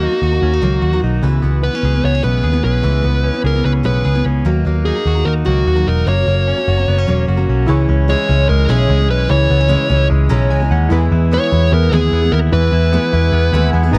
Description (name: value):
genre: indie pop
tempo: 149 BPM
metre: 4/4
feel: straight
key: C# dorian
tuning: A4 = 438 Hz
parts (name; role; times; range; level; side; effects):
- dark smooth lead guitar; melody; 0.0-13.7 s; F#4 to C#5; -22 LUFS; equal; overdrive
- picked steel-string acoustic guitar; accompaniment; 0.0-14.0 s; G#2 to B4; -24 LUFS; equal; none
- direct-recorded clean electric guitar; arpeggios; 0.0-14.0 s; E3 to G#4; -26 LUFS; equal; none
- vintage muted picked electric bass; bass; 0.0-14.0 s; E1 to E2; -16 LUFS; equal; none
- chorused retro synth keys; accompaniment; 7.7-14.0 s; D#4 to A#5; -27 LUFS; equal; tremolo
room: digital ambience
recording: dry, close 1970s-style studio recording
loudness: -15 LUFS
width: mono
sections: 0.0-7.7 A section; 7.7-14.0 B section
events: synth keys fill 10.1-10.9, 13.3-14.0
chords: 0.0 D#m; 1.2 C#m7; 4.5 D#m; 6.1 F#; 7.7 C#m; 10.9 E